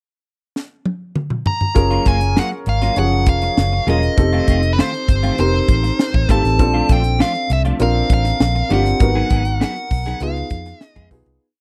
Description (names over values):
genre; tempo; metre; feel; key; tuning
polished 1980s jazz-funk pop; 99 BPM; 4/4; straight; unclear; A4 = 441 Hz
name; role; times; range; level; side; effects
crisp fusion drum kit; drums; 0.6-11.4 s; hi-hat, kick drum, snare drum, toms; -19 LUFS; equal; none
nasal lead guitar with a parked wah; melody; 1.5-11.1 s; B4 to A#5; -24 LUFS; equal; overdrive
warm grand piano; accompaniment; 1.7-11.4 s; E#3 to C#5; -24 LUFS; equal; subtle chorus
clean electric guitar; riff; 1.8-11.3 s; Eb3 to G#4; -27 LUFS; equal; ensemble chorus
vintage muted fingered electric bass; bass; 1.8-11.4 s; E1 to E#2; -21 LUFS; equal; none
room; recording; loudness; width
studio ambience; dry, close 1970s-style studio recording; -17 LUFS; mono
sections
0.0-1.8 pickup bar; 1.8-11.4 verse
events
drum fill 0.6-1.8; fade-out 9.0-11.4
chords
0.0 N.C.; 1.8 F#maj7; 4.2 F7; 6.6 A#maj7; 9.0 G#m7; 10.2 C#7